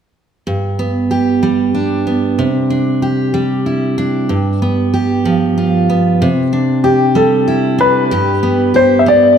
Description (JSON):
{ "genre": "six-eight pop ballad", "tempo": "63 BPM (dotted quarters)", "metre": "6/8", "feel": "straight", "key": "G major", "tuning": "A4 = 441 Hz", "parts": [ { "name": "picked steel-string acoustic guitar", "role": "accompaniment", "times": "0.5-9.4 s", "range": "G2 to G4", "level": "-13 LUFS", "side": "right 2 dB", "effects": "none" }, { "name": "clear concert grand piano", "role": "melody", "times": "6.8-9.4 s", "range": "G4 to E5", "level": "-11 LUFS", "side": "left 2 dB", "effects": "ping-pong delay" } ], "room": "moderate scoring stage reverb, RT60 1.7 s", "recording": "none", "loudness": "-12 LUFS", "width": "side -8 dB against mid", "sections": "0.5-8.1 A section; 8.1-9.4 B section", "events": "none", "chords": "0.5 G; 2.4 Cadd9; 4.3 G7; 6.2 Cadd9; 8.1 G", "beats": "| 0.47 1.42 | 2.38 3.33 | 4.29 5.24 | 6.20 7.15 | 8.11 9.06" }